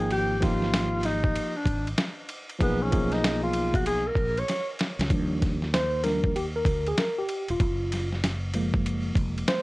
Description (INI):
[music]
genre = hip hop, jazz-hop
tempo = 96 BPM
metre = 4/4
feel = swing 64% on 16ths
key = Eb major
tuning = A4 = 438 Hz
[part]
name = breathy tenor saxophone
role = melody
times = 0.0-4.7 s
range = B3 to C#5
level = -29 LUFS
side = left 1 dB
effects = analog delay
[part]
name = tine electric piano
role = accompaniment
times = 0.0-9.6 s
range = F3 to G5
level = -28 LUFS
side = equal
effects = overdrive, fast stereo tremolo
[part]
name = mellow fretless electric bass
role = bass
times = 0.0-9.4 s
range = Eb1 to Eb2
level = -30 LUFS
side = equal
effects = none
[part]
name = boom bap sampler-style drum kit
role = drums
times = 0.1-9.6 s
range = hi-hat, kick drum, ride cymbal, snare drum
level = -28 LUFS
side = equal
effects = overdrive
[sound]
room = light reverb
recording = worn, warbling old tape, cassette tape, warbly pitch drift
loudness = -24 LUFS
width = side -21 dB against mid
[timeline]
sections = 0.0-5.1 A section; 5.1-9.6 A section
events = tenor saxophone solo 0.0-5.1; drum fill 4.5-5.1; tine electric piano solo 5.1-9.6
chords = 0.0 Absus2; 2.6 Bmaj9; 5.1 Ebmaj9; 7.6 Gbmaj9